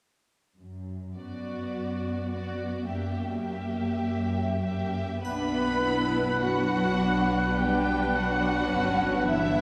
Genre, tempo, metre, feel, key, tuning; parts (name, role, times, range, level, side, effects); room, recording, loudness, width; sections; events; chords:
classical, slow romantic movement for symphony orchestra; 46-56 BPM; 4/4; rubato; B minor; A4 = 442 Hz
warm symphonic cello section; bass; 0.6-9.6 s; F#2 to B3; -34 LUFS; equal
warm symphonic violin section; melody; 1.2-9.6 s; D5 to B5; -36 LUFS; equal
warm studio violin section; second line; 1.2-9.6 s; E4 to B4; -38 LUFS; equal
warm symphonic viola section; accompaniment; 1.2-9.6 s; A#3 to F#4; -35 LUFS; equal
bright clarinet; second line; 5.2-9.6 s; D4; -39 LUFS; equal
hollow concert flute; second line; 5.2-9.6 s; F#6; -37 LUFS; equal
warm bassoon; accompaniment; 5.2-9.6 s; B3; -38 LUFS; equal
rich symphonic double bass section; bass; 5.2-9.6 s; G1 to B1; -36 LUFS; equal
triangle; percussion; 5.2-7.5 s; -57 LUFS; equal
mellow oboe; second line; 5.3-9.6 s; B4; -36 LUFS; equal
mellow French horn section; sustained chords; 5.3-9.6 s; B3 to D4; -36 LUFS; equal
wet cathedral reverb, RT60 5.8 s; recorded in a church or concert hall; -27 LUFS; mono
0.6-5.2 A section; 5.2-9.6 B section
0.6 Bm/F#; 2.9 F#7b9; 5.2 Bm